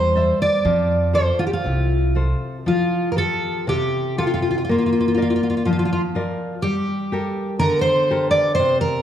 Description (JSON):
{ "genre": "fado-style ballad", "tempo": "61 BPM", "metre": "2/4", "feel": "rubato", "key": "F major", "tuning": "A4 = 441 Hz", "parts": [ { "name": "fingerpicked twelve-string acoustic guitar", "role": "melody", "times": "0.0-9.0 s", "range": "F4 to D5", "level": "-20 LUFS", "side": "right 1 dB", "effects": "none" }, { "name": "nylon-string guitar", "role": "accompaniment", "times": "0.0-9.0 s", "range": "C3 to E5", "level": "-22 LUFS", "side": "left 2 dB", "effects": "none" }, { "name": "upright bass", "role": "bass", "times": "0.0-2.3 s", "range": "C2 to F2", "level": "-21 LUFS", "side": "right 1 dB", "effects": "none" } ], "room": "moderate recital hall reverb, RT60 1.6 s", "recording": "dark, warm production", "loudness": "-17 LUFS", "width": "side -10 dB against mid", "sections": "0.0-2.7 A section; 2.7-9.0 A section", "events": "none", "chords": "0.0 Cadd9; 0.7 F; 2.7 Fadd9; 4.7 Bb; 6.6 Gmadd9" }